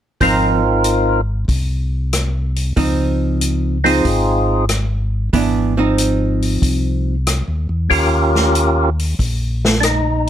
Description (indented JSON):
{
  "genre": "soul jazz organ trio",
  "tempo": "94 BPM",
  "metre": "4/4",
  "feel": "swing 69% on 8ths",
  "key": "Ab major",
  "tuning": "A4 = 438 Hz",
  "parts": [
    { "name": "percussive tonewheel organ", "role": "melody", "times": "0.2-10.3 s", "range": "C4 to Bb4", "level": "-15 LUFS", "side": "equal", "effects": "slow rotary speaker, overdrive" },
    { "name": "archtop guitar, miked and amplified", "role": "accompaniment", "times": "0.2-7.1 s", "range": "Fb3 to Eb4", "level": "-18 LUFS", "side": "right 3 dB", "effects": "none" },
    { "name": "mellow tonewheel organ", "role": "bass", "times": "0.2-10.3 s", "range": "Ab1 to Fb2", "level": "-18 LUFS", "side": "equal", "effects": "slow rotary speaker" },
    { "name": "vintage drum kit", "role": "drums", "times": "0.2-10.3 s", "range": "hi-hat, kick drum, rim click, snare drum", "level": "-21 LUFS", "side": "left 1 dB", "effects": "none" }
  ],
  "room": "little or no reverb",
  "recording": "close, detailed microphones",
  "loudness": "-14 LUFS",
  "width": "side -10 dB against mid",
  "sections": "0.2-10.3 A section",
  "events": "none",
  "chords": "0.2 Ab6; 2.8 Dbmaj9; 5.3 Ab6; 7.9 Eb7"
}